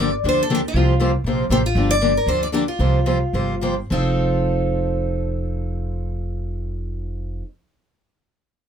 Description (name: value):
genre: acoustic string swing (jazz manouche)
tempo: 202-237 BPM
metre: 4/4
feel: swing 55% on 8ths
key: F mixolydian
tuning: A4 = 440 Hz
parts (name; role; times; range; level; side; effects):
- picked steel-string acoustic guitar; melody; 0.0-7.4 s; F4 to D5; -24 LUFS; left 2 dB; none
- picked steel-string acoustic guitar; accompaniment; 0.0-7.5 s; C3 to C5; -22 LUFS; equal; none
- upright bass; bass; 0.0-7.4 s; F1 to D2; -22 LUFS; equal; none
room: little or no reverb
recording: close, detailed microphones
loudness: -18 LUFS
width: side -8 dB against mid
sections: 0.0-3.9 A section; 3.9-6.3 B section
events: slowing down 1.8-3.9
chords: 0.0 Gm7; 0.8 C7sus4; 1.8 Gm7; 2.8 C7sus4; 3.9 F7